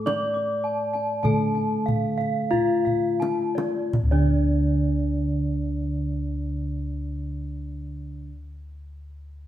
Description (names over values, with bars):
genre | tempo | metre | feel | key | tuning
Javanese gamelan | 41-53 BPM | 4/4 | straight | unclear | A4 = 435 Hz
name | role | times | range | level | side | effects
gamelan-type bronze metallophone | melody | 0.0-8.3 s | D4 to D5 | -27 LUFS | left 2 dB | none
gamelan-type bronze metallophone | accompaniment | 0.0-8.3 s | D3 to A3 | -29 LUFS | right 2 dB | none
gamelan-type bronze metallophone | arpeggios | 0.0-8.3 s | D5 to D6 | -30 LUFS | right 3 dB | none
gamelan-type bossed gongs | bass | 0.0-8.2 s | D2 to A4 | -29 LUFS | left 1 dB | none
kendang | percussion | 0.1-4.6 s | none | -29 LUFS | equal | none
room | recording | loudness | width
wet stone room reverb, RT60 1.3 s | band playing live in one room | -22 LUFS | side -12 dB against mid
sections
0.0-3.9 A section; 3.9-9.5 B section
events
slowing down 0.0-3.9; drum fill 2.5-3.9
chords
none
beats
0.06 1.24 2.52 | 3.92 5.39 6.87